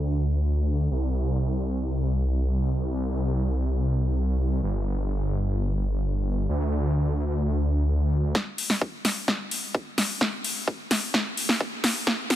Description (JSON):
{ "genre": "EDM, festival progressive house", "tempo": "129 BPM", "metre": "4/4", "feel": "straight", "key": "unclear", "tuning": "A4 = 437 Hz", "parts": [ { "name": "wide detuned saw bass", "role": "bass", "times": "0.0-8.3 s", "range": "G1 to D2", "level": "-23 LUFS", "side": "equal", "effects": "chorus, sidechain pumping" }, { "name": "big-room dance drum kit", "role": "drums", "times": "8.3-12.4 s", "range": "hi-hat, snare drum", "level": "-24 LUFS", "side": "equal", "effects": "none" }, { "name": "electronic kick drum", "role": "drums", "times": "8.3-12.2 s", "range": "none", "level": "-27 LUFS", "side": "equal", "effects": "high-pass filter on kick" } ], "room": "digital ambience", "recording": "high-pass filter, low-pass filter", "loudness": "-23 LUFS", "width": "side -13 dB against mid", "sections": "0.0-8.3 A section; 8.3-12.4 B section", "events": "filter sweep 0.0-8.3; build-up 8.3-12.4; drum fill 8.3-12.4", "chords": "none", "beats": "0.44 | 0.91 1.37 1.84 2.30 | 2.77 3.23 3.70 4.16 | 4.63 5.09 5.56 6.03 | 6.49 6.96 7.42 7.88 | 8.35 8.81 9.28 9.74 | 10.21 10.68 11.14 11.61 | 12.07" }